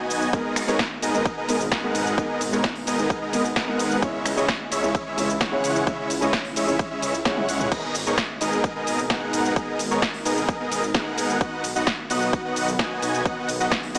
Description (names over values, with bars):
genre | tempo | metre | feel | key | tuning
EDM, festival progressive house | 130 BPM | 4/4 | straight | G# minor | A4 = 440 Hz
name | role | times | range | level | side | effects
lush unison pad | sustained chords | 0.0-14.0 s | B2 to A#4 | -31 LUFS | equal | none
dense compressed supersaw | riff | 0.0-14.0 s | G#3 to G#5 | -25 LUFS | equal | sidechain pumping, tape echo
detuned saw bass | bass | 0.1-14.0 s | G#1 to C#2 | -31 LUFS | equal | sidechain pumping
big-room dance drum kit | drums | 0.1-14.0 s | crash cymbal, finger snaps, hi-hat, ride cymbal, shaker, snare drum, toms | -28 LUFS | equal | none
clear grand piano | accompaniment | 0.3-7.4 s | G#2 to C#5 | -28 LUFS | equal | sidechain pumping, tape echo
electronic kick drum | drums | 0.3-13.8 s | none | -26 LUFS | equal | overdrive
room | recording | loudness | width
moderate recital hall reverb, RT60 1.7 s | small speaker sound | -21 LUFS | side -38 dB against mid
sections
0.0-7.7 A section; 7.7-14.0 A section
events
drop 0.0-7.7, 7.7-14.0; drum fill 7.3-7.7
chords
0.3 G#madd9; 4.0 C#m; 7.7 G#madd9; 11.4 B